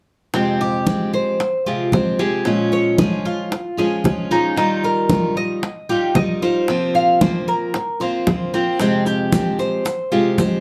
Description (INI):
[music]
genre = latin, Cuban son and guajira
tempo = 114 BPM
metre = 4/4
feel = straight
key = F minor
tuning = A4 = 440 Hz
[part]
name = picked steel-string acoustic guitar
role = accompaniment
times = 0.3-10.6 s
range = F2 to G4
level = -22 LUFS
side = equal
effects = none
[part]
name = Cuban tres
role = arpeggios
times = 0.3-10.6 s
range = C4 to F5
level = -24 LUFS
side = equal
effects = none
[part]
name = bongos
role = percussion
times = 0.3-10.6 s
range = none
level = -26 LUFS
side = equal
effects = none
[part]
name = congas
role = percussion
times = 0.3-10.6 s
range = none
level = -25 LUFS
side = equal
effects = none
[part]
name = maracas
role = percussion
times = 8.8-10.6 s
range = none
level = -40 LUFS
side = equal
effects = none
[sound]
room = moderate small room reverb, RT60 0.5 s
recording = none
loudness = -19 LUFS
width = mono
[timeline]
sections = 0.3-10.6 A section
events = none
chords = 0.3 Fmadd9; 2.5 Bbm7; 4.6 Ebadd9; 6.7 C7sus4; 8.8 Fmadd9